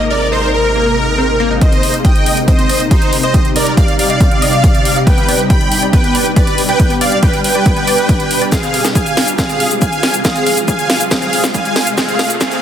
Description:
uplifting trance; 139 BPM; 4/4; straight; C minor; A4 = 439 Hz
supersaw chords; melody; 0.0-12.6 s; Eb4 to B5; -16 LUFS; right 1 dB; analog chorus, cassette tape, sidechain pumping, digital delay
warm symphonic violin section; second line; 0.0-1.5 s; Bb4; -20 LUFS; left 1 dB; digital delay
wide unison pluck; arpeggios; 0.0-12.6 s; Bb3 to F5; -22 LUFS; left 2 dB; phaser, sidechain pumping, digital delay
tight sequencer bass; bass; 0.0-1.6 s; Ab1; -20 LUFS; equal; sidechain pumping
electronic kick drum; drums; 1.6-12.5 s; -13 LUFS; equal
techno drum kit; drums; 1.6-12.6 s; hi-hat, shaker, snare drum; -18 LUFS; equal
riser; sound effects; 9.7-12.6 s; -25 LUFS; equal
light reverb, digital ambience; dense, heavily limited modern master, high-pass filter; -10 LUFS; side -9 dB against mid
0.0-1.6 A section; 1.6-12.6 B section
build-up 1.6-12.6; filter sweep on synth pluck 1.6-12.6; filter sweep 1.6-12.6; drum fill 8.5-12.6; riser 9.7-12.6
0.0 Abadd9; 1.6 Cm; 5.1 G; 8.5 Fm; 12.0 Abadd9
0.32 0.75 1.18 | 1.62 2.05 2.48 2.91 | 3.34 3.77 4.21 4.64 | 5.07 5.50 5.93 6.36 | 6.79 7.23 7.66 8.09 | 8.52 8.95 9.38 9.82 | 10.25 10.68 11.11 11.54 | 11.97 12.41

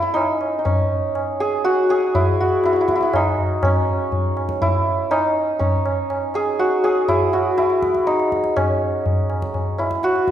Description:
indian classical, Hindustani; 122 BPM; 5/4; straight; C# raga bhimpalasi; A4 = 440 Hz
santur; melody; 0.0-10.3 s; C#4 to G#4; -18 LUFS; equal
tabla; percussion; 0.2-10.3 s; -23 LUFS; equal
wet recital hall reverb, RT60 1.6 s; recorded in a church or concert hall; -17 LUFS; side -10 dB against mid
0.0-10.3 A section
0.16 0.66 | 1.16 1.65 2.15 2.64 3.14 | 3.63 4.12 4.62 5.11 5.61 | 6.10 6.59 7.08 7.58 8.07 | 8.56 9.05 9.54 10.03

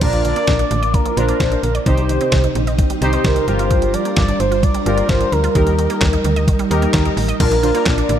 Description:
synth-pop; 130 BPM; 4/4; straight; Bb major; A4 = 440 Hz
mellow horn-like synth lead; melody; 0.0-8.2 s; Bb4 to D5; -21 LUFS; equal; chorus, phaser, tape echo
analog synth brass; accompaniment; 0.0-8.2 s; D4 to C5; -22 LUFS; left 1 dB; chorus
ensemble organ-string; sustained chords; 0.0-8.2 s; C3 to Bb4; -24 LUFS; right 1 dB; ensemble chorus
resonant blip pluck; arpeggios; 0.0-8.2 s; D3 to Eb5; -26 LUFS; right 6 dB; chorus, tape echo
slap-like FM bass; bass; 0.0-8.2 s; G1 to Eb2; -19 LUFS; equal
detuned 8-bit digital drum machine; drums; 0.0-8.2 s; crash cymbal, handclaps, hi-hat, kick drum, snare drum; -19 LUFS; equal
light reverb, digital ambience; dark, warm production; -14 LUFS; side -10 dB against mid
0.0-7.4 A section
0.0 Bb; 1.9 Cm; 3.5 Gm7; 5.6 Eb; 7.4 Bb
| 0.02 0.48 0.94 1.40 | 1.86 2.32 2.79 3.25 | 3.71 4.17 4.63 5.09 | 5.55 6.02 6.48 6.94 | 7.40 7.86

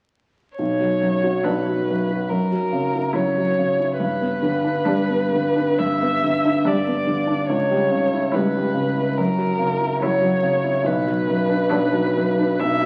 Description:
classical, slow romantic movement for piano quartet; 70 BPM; 4/4; rubato; B minor; A4 = 441 Hz
dark violin; melody; 0.6-12.9 s; A#4 to E5; -24 LUFS; equal
warm grand piano; accompaniment; 0.6-12.9 s; B1 to F#4; -23 LUFS; equal
rich cello; second line; 1.4-12.4 s; F#3 to G3; -32 LUFS; equal
rich viola; accompaniment; 1.4-12.4 s; D4 to E4; -32 LUFS; equal
wet recital hall reverb, RT60 1.7 s; very old 78 rpm record, vinyl crackle; -21 LUFS; mono
0.6-12.9 A section
0.6 Bm; 2.3 F#7; 4.0 G; 7.5 C#m7b5; 9.2 F#7; 10.9 Bm
| 0.57 1.44 2.29 3.14 | 4.00 4.86 5.79 6.66 | 7.49 8.33 9.18 10.02 | 10.86 11.70 12.60

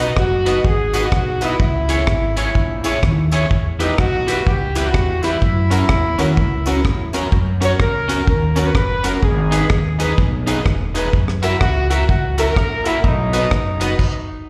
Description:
ska; 126 BPM; 4/4; swing 62% on 8ths; A4 = 440 Hz
mellow horn section; melody; 0.0-14.5 s; D#4 to C#5; -24 LUFS; equal; slapback echo, tape echo
electric guitar at the edge of break-up; accompaniment; 0.0-13.9 s; C#4 to E5; -26 LUFS; equal; subtle chorus, slapback echo
bright upright piano; stabs; 0.0-13.9 s; C#4 to C#5; -30 LUFS; equal; slapback echo
upright bass; bass; 0.0-13.9 s; E1 to F#2; -22 LUFS; equal
deep reggae drum kit; drums; 0.2-14.1 s; crash cymbal, hi-hat, kick drum, rim click; -21 LUFS; equal
tambourine; percussion; 0.5-13.9 s; -38 LUFS; equal
small room ambience; live gig heard through the venue's PA, recital hall reverb; -17 LUFS; mono
0.0-14.5 A section
stop 14.0-14.5
0.0 B; 1.6 C#m; 3.5 Em; 5.4 F#; 9.2 G#m; 11.1 F#7; 13.0 B
0.17 0.65 1.12 | 1.60 2.08 2.55 3.03 | 3.51 3.98 4.46 4.94 | 5.41 5.89 6.37 6.84 | 7.32 7.80 8.27 8.75 | 9.23 9.70 10.18 10.66 | 11.13 11.61 12.09 12.56 | 13.04 13.52 13.99

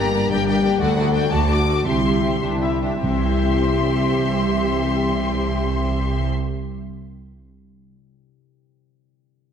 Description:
cinematic; 95-121 BPM (dotted quarters); 6/8; straight; C mixolydian; A4 = 443 Hz
warm symphonic violin section; melody; 0.0-6.3 s; F#5 to D6; -27 LUFS; left 6 dB
warm symphonic violin section; second line; 0.0-6.3 s; F#4 to E5; -28 LUFS; left 1 dB
dark symphonic viola section; accompaniment; 0.0-6.3 s; A3 to G4; -27 LUFS; right 1 dB
mellow French horn section; sustained chords; 0.0-6.3 s; E3 to Bb4; -26 LUFS; left 5 dB
concert harp; arpeggios; 0.0-7.2 s; G2 to G5; -27 LUFS; left 7 dB
warm symphonic cello section; bass; 0.0-6.3 s; C2 to G2; -25 LUFS; right 2 dB
warm symphonic double bass section; bass; 0.0-6.3 s; G1 to D2; -25 LUFS; right 3 dB
timpani; percussion; 3.0-7.0 s; C3; -30 LUFS; right 1 dB
moderate scoring stage reverb, RT60 1.6 s; -18 LUFS; side -8 dB against mid
0.0-3.0 A section; 3.0-5.5 B section
slowing down 0.3-3.0
0.0 Gm; 0.8 D; 1.9 C
0.31 | 0.81 1.31 | 1.85 2.42 | 3.04 3.66 | 4.29 4.92

